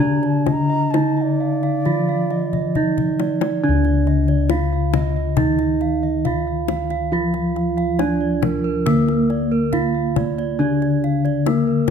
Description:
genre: Javanese gamelan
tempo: 69 BPM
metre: 4/4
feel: straight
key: D pelog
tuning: A4 = 435 Hz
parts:
  - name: gamelan-type bronze metallophone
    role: melody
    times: 0.0-11.9 s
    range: Bb3 to F4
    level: -22 LUFS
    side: right 3 dB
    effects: none
  - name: bansuri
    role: second line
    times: 0.0-3.3 s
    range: D5 to Bb5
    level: -28 LUFS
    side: left 2 dB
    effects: none
  - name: gamelan-type bronze metallophone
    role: accompaniment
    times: 0.0-11.9 s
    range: D3 to Bb3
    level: -23 LUFS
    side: left 3 dB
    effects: none
  - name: gamelan-type bronze metallophone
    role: arpeggios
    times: 0.0-11.9 s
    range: Bb4 to F5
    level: -27 LUFS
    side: right 8 dB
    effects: none
  - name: gamelan-type bossed gongs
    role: bass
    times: 0.0-11.9 s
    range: D2 to F4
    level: -23 LUFS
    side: left 2 dB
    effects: none
  - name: kendang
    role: percussion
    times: 0.2-11.9 s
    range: none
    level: -25 LUFS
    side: left 8 dB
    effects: none
room: moderate recital hall reverb, RT60 1.5 s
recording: close, detailed microphones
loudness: -17 LUFS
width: side -7 dB against mid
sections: 0.0-3.6 A section; 3.6-11.9 B section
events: drum fill 2.5-3.6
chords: none

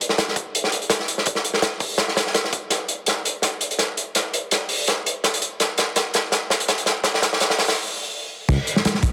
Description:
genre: drum and bass, jungle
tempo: 166 BPM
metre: 4/4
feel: swing 54% on 16ths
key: unclear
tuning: A4 = 436 Hz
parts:
  - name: crunchy breakbeat drum kit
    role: drums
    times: 0.0-9.1 s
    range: crash cymbal, hi-hat, kick drum, snare drum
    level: -22 LUFS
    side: equal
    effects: high-pass filter on kick, high-pass filter on hats, high-pass filter on cymbals, high-pass filter on snare, high-pass filter on room
  - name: dark detuned saw bass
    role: bass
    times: 8.5-8.6 s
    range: C#2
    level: -21 LUFS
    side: equal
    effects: none
room: moderate plate reverb, RT60 2.2 s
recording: heavily compressed radio sound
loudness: -22 LUFS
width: mono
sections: 0.0-8.5 A section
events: build-up 0.0-8.5; drum fill 2.7-7.8; stop 7.8-8.5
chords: none

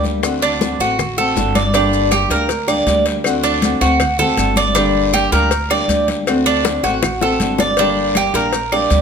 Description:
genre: latin, Cuban son and guajira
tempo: 159 BPM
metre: 4/4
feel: straight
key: G minor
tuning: A4 = 439 Hz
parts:
  - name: flamenco guitar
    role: accompaniment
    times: 0.0-9.0 s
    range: D3 to G4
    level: -19 LUFS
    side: left 2 dB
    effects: none
  - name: Cuban tres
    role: arpeggios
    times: 0.0-9.0 s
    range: D4 to D5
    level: -17 LUFS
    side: right 4 dB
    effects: slapback echo
  - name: upright bass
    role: bass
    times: 0.0-9.0 s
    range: G1 to D2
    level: -22 LUFS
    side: equal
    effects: none
  - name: bongos and cowbell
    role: percussion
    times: 0.0-9.0 s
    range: none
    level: -24 LUFS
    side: left 7 dB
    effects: none
  - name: congas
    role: percussion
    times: 0.0-9.0 s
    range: none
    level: -24 LUFS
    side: left 3 dB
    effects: none
  - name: guiro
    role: percussion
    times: 0.0-9.0 s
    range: none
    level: -31 LUFS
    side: left 6 dB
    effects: none
  - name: maracas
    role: percussion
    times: 0.1-9.0 s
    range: none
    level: -30 LUFS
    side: left 9 dB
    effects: none
  - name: claves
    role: percussion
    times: 0.2-8.9 s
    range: none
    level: -28 LUFS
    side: right 1 dB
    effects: none
room: light reverb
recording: close, detailed microphones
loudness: -13 LUFS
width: side -6 dB against mid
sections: 0.0-1.7 A section; 1.7-9.0 A section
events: drum fill 6.6-7.8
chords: 0.2 D7; 1.7 Gm; 3.3 D7; 4.8 Gm; 6.3 D7; 7.8 Gm

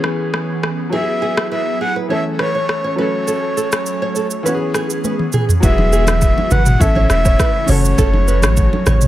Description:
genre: afrobeats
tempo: 102 BPM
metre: 4/4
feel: straight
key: E major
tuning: A4 = 437 Hz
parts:
  - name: breathy flute-like synth lead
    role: melody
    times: 0.0-9.1 s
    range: C#5 to F#5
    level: -20 LUFS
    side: equal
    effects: chorus
  - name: warm grand piano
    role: accompaniment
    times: 0.0-9.1 s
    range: E3 to A4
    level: -22 LUFS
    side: left 2 dB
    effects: none
  - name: airy breathy pad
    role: sustained chords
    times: 0.0-9.1 s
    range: C#3 to A4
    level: -25 LUFS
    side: right 1 dB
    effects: chorus
  - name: afro-pop drum kit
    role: drums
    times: 0.0-9.1 s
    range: hi-hat, kick drum, rim click, shaker, toms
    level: -18 LUFS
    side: equal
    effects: none
  - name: nylon-string guitar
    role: riff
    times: 0.9-9.0 s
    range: F#4 to C#5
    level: -24 LUFS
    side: right 5 dB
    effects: digital delay
  - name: punchy sub bass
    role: bass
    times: 5.6-9.1 s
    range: E1 to A1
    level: -15 LUFS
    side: equal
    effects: none
  - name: congas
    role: percussion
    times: 5.8-9.0 s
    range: none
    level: -22 LUFS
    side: right 2 dB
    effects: none
room: little or no reverb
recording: none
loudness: -13 LUFS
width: side -14 dB against mid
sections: 0.0-5.6 A section; 5.6-9.1 B section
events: drum fill 5.0-5.6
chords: 0.0 C#m7; 0.9 Eadd9; 2.1 A; 3.0 F#m; 4.5 C#m7; 5.6 Eadd9; 6.8 A; 7.7 F#m

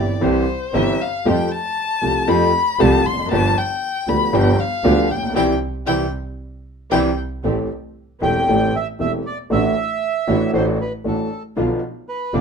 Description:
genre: tango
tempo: 116 BPM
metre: 4/4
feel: rubato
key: C major, A minor from 7.4 s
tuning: A4 = 438 Hz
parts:
  - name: warm violin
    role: second line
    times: 0.0-7.1 s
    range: C5 to C6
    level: -21 LUFS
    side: left 5 dB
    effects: none
  - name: warm concert grand piano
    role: accompaniment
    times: 0.0-12.4 s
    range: E1 to G4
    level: -19 LUFS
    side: equal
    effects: none
  - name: dark studio string section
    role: stabs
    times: 0.0-12.4 s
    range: A3 to A4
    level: -27 LUFS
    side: right 2 dB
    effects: none
  - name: rich double bass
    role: bass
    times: 0.0-12.4 s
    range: E1 to F2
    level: -23 LUFS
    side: right 2 dB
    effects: none
  - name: bandoneon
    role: melody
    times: 8.2-12.4 s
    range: A4 to G5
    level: -22 LUFS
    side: right 2 dB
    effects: none
room: moderate club reverb, RT60 0.8 s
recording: minimal, uncompressed stereo recording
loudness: -17 LUFS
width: side -6 dB against mid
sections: 0.0-7.4 A section; 7.4-12.4 B section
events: violin solo 0.0-7.4; band accent 5.4-7.4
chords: 0.0 C; 1.3 Fadd9; 3.3 G7; 5.4 C; 7.4 Am7; 9.5 Dadd9/A; 11.6 Bdim

